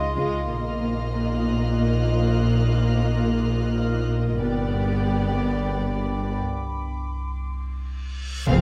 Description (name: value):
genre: cinematic, suspense film score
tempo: 90 BPM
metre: 3/4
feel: uneven beats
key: unclear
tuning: A4 = 440 Hz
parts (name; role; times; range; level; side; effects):
- warm studio violin section; melody; 0.0-8.6 s; D5 to F5; -36 LUFS; equal; none
- dark studio violin section; second line; 0.0-8.6 s; F4 to Ab4; -38 LUFS; equal; none
- warm studio viola section; accompaniment; 0.0-8.6 s; Ab3 to C4; -31 LUFS; equal; none
- glass harmonica; sustained chords; 0.0-8.6 s; B3 to Ab5; -37 LUFS; equal; none
- folk marimba with soft mallets; riff; 0.0-8.6 s; F2 to Bb3; -30 LUFS; equal; none
- soft dub sub bass; drone; 0.0-8.6 s; F1 to Db2; -33 LUFS; equal; none
- vibraphone with medium mallets; texture; 0.0-6.4 s; Bb4 to F6; -39 LUFS; equal; none
- dark studio cello section; bass; 0.2-8.6 s; F2 to Db3; -31 LUFS; equal; none
- warm studio double bass section; bass; 0.2-8.6 s; F1 to Db2; -32 LUFS; equal; none
- rich studio violin section; texture; 0.5-8.1 s; B5 to Gb6; -42 LUFS; equal; none
- reverse cymbal and impact; sound effects; 8.1-8.6 s; none; -31 LUFS; equal; none
room: moderate recital hall reverb, RT60 1.7 s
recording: close, detailed microphones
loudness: -24 LUFS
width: mono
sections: 0.0-8.5 A section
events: break 6.4-8.5; reverse cymbal 8.1-8.5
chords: 0.5 Bbsus4; 4.4 G; 6.4 Csus2